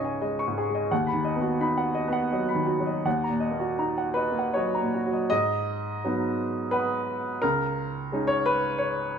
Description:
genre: neoclassical minimalist piano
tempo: 78-89 BPM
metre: 3/4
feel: rubato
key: G# minor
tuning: A4 = 440 Hz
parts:
  - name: clear upright piano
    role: solo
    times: 0.0-9.2 s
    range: C#2 to D#6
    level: -24 LUFS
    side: equal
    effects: none
room: moderate large studio reverb, RT60 1.1 s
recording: band playing live in one room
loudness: -24 LUFS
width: side -7 dB against mid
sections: 0.0-5.3 A section; 5.3-9.2 B section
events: none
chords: 0.0 C#sus2; 0.9 B/D#; 3.1 D#m; 5.3 G#m7; 7.4 C#sus2

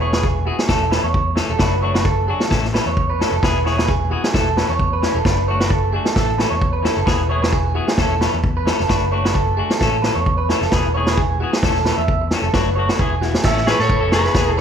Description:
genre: highlife guitar band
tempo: 132 BPM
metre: 4/4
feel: swing 55% on 16ths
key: A major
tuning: A4 = 440 Hz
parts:
  - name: clean electric guitar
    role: accompaniment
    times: 0.0-14.6 s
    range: E3 to A4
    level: -24 LUFS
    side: left 6 dB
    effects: none
  - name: electric guitar at the edge of break-up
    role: arpeggios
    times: 0.0-14.6 s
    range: F#4 to E5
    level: -21 LUFS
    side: right 4 dB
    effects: spring reverb
  - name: fingered electric bass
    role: bass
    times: 0.0-14.6 s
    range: E1 to A2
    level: -22 LUFS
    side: equal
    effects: none
  - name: vintage drum kit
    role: drums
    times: 0.1-14.6 s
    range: crash cymbal, kick drum, snare drum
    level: -20 LUFS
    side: equal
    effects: none
  - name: electric guitar at the edge of break-up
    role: melody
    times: 13.7-14.6 s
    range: G#4 to C#5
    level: -19 LUFS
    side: left 2 dB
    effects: none
room: moderate large studio reverb, RT60 1.0 s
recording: band playing live in one room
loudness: -15 LUFS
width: side -8 dB against mid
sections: 0.0-13.4 A section; 13.4-14.6 B section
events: none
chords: 0.0 E; 0.7 A/E; 1.6 D/F#; 2.5 A; 3.4 E; 4.3 A/E; 5.3 D/F#; 6.2 A; 7.1 E; 8.0 A/E; 8.9 D/F#; 9.8 A; 10.7 E; 11.6 A/E; 12.5 D/F#; 13.0 E; 13.4 A

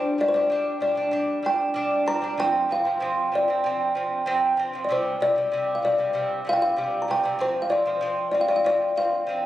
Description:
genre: mongolian traditional, Mongolian folk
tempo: 96 BPM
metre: 4/4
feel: straight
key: unclear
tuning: A4 = 440 Hz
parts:
  - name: kalimba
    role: melody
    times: 0.0-9.5 s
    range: C5 to Bb5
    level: -23 LUFS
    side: left 1 dB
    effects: none
  - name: lute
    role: arpeggios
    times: 0.0-9.5 s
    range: C3 to D4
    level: -26 LUFS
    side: right 2 dB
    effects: none
room: moderate scoring stage reverb, RT60 2.0 s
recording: recorded on a phone in the room, studio reverb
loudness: -21 LUFS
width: side -13 dB against mid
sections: 0.0-9.5 A section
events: none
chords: 0.0 G5; 2.4 F5; 4.9 C5; 7.4 F5

